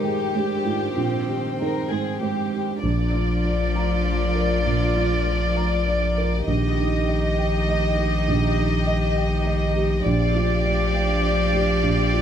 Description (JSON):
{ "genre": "neoclassical piano and strings", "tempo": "100 BPM", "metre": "3/4", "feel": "rubato", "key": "Bb mixolydian", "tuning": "A4 = 440 Hz", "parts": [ { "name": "warm chamber violin section", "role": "melody", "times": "0.0-12.2 s", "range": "G4 to Eb5", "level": "-26 LUFS", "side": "left 2 dB", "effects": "none" }, { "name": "warm cello", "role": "second line", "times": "0.0-12.2 s", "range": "Eb3 to Eb4", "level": "-30 LUFS", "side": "right 5 dB", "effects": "none" }, { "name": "felt-muted upright piano", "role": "accompaniment", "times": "0.0-12.2 s", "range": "Bb1 to Bb5", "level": "-26 LUFS", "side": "right 4 dB", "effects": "none" }, { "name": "warm chamber string section", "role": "sustained chords", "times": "0.0-12.2 s", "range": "Eb3 to G5", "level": "-33 LUFS", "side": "left 4 dB", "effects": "none" }, { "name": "warm viola", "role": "accompaniment", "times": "2.8-12.2 s", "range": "F4 to G4", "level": "-31 LUFS", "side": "right 3 dB", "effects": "none" }, { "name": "saturated sub bass", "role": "bass", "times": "2.8-12.2 s", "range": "Bb1", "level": "-23 LUFS", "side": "left 2 dB", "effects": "none" } ], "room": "light reverb", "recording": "none", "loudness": "-20 LUFS", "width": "side -9 dB against mid", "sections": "0.0-2.8 A section; 2.8-12.2 B section", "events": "none", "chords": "0.0 Abmaj7/Bb; 2.8 Bb; 6.5 Eb/Bb; 10.1 Gm7/Bb" }